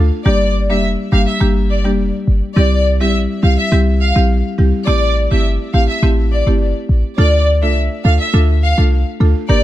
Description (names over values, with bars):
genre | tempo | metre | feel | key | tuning
dancehall | 104 BPM | 4/4 | straight | D minor | A4 = 440 Hz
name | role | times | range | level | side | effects
buzzing marimba with medium mallets | accompaniment | 0.0-9.6 s | G3 to Bb4 | -18 LUFS | equal | none
clean 808-style bass | bass | 0.0-9.6 s | F1 to D2 | -13 LUFS | equal | none
warm studio violin section | melody | 0.3-9.6 s | D5 to F5 | -19 LUFS | left 1 dB | ping-pong delay
room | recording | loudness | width
small room ambience | none | -12 LUFS | side -14 dB against mid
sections
0.0-7.2 A section; 7.2-9.6 B section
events
none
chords
0.3 Gm; 2.6 C; 4.9 Am7; 7.2 Dm